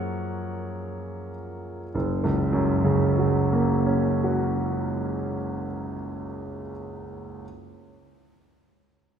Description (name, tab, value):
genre	classical, impressionist solo piano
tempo	33-36 BPM (dotted quarters)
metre	6/8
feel	rubato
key	F# major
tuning	A4 = 440 Hz
part	clear concert grand piano	solo	0.0-7.5 s	F#1 to F#5	-24 LUFS	right 1 dB	none
room	wet church reverb, RT60 2.8 s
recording	recorded in a church or concert hall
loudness	-23 LUFS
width	side -8 dB against mid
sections	0.0-1.9 A section; 1.9-5.3 B section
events	slowing down 0.0-1.9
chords	0.0 F#maj9; 1.9 F#